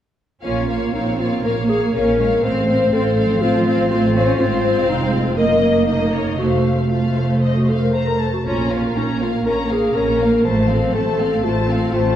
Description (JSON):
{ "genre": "quick classical-period movement for symphony orchestra", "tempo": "121 BPM", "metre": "4/4", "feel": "rubato", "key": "Bb minor", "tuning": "A4 = 439 Hz", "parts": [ { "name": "rich chamber violin section", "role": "melody", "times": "0.4-12.2 s", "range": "Eb5 to Bb5", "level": "-28 LUFS", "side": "left 3 dB", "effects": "none" }, { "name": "warm clarinet", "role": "second line", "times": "0.4-12.2 s", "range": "Eb4 to C5", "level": "-21 LUFS", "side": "left 2 dB", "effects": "none" }, { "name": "warm studio violin section", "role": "second line", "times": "0.4-12.2 s", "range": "A4 to Eb5", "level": "-24 LUFS", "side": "left 4 dB", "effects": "none" }, { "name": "rich studio viola section", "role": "accompaniment", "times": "0.4-12.2 s", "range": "A3 to Db4", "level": "-24 LUFS", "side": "right 1 dB", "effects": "none" }, { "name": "rich studio cello section", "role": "bass", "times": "0.4-12.2 s", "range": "F3 to Db4", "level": "-23 LUFS", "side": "right 2 dB", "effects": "none" }, { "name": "warm chamber double bass section", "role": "bass", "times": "0.4-12.2 s", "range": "F1 to Bb1", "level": "-21 LUFS", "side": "right 2 dB", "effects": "none" } ], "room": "wet recital hall reverb, RT60 1.6 s", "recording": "recorded in a church or concert hall", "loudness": "-15 LUFS", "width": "side -10 dB against mid", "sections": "0.4-12.2 A section", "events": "none", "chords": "0.4 Bbm; 2.4 F/A; 4.4 Fm/Ab; 5.4 Ebm/Gb; 6.4 F; 8.5 Bbm; 10.5 F/A" }